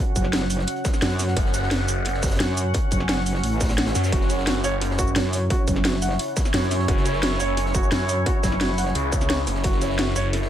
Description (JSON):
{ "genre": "dark technical drum and bass", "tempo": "174 BPM", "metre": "4/4", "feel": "straight", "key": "F# minor", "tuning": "A4 = 439 Hz", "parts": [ { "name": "deep dark ambient pad", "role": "sustained chords", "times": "0.0-10.5 s", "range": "C#4 to F#5", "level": "-28 LUFS", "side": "equal", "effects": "chorus, built-in reverb, sidechain pumping" }, { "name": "metallic wobble bass", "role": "bass", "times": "0.2-8.9 s", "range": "F#1 to F#2", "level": "-24 LUFS", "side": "equal", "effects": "chorus, tube saturation" }, { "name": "crunchy breakbeat drum kit", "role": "drums", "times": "0.2-10.5 s", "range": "hi-hat, snare drum", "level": "-36 LUFS", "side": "equal", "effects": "none" }, { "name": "drum and bass drum kit", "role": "drums", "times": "0.2-10.4 s", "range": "hi-hat, shaker, snare drum", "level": "-26 LUFS", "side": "equal", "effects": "none" }, { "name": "electronic kick drum", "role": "drums", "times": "0.2-9.7 s", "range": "none", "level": "-24 LUFS", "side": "equal", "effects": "distortion" }, { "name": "phased detuned saw bass", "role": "bass", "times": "1.4-10.5 s", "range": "F#1 to F#2", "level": "-25 LUFS", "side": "equal", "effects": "phaser, overdrive, sidechain pumping" }, { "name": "felt-muted upright piano", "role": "arpeggios", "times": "4.1-10.3 s", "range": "F#4 to F#5", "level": "-29 LUFS", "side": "right 2 dB", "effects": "sidechain pumping, digital delay" } ], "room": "studio reverb", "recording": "none", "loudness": "-20 LUFS", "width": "side -11 dB against mid", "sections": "0.0-10.5 A section", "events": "none", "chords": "0.0 F#5", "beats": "0.33 0.68 1.02 | 1.37 1.71 2.06 2.40 | 2.75 3.09 3.44 3.78 | 4.12 4.47 4.81 5.16 | 5.50 5.85 6.19 6.54 | 6.88 7.23 7.57 7.92 | 8.26 8.61 8.95 9.30 | 9.64 9.99 10.33" }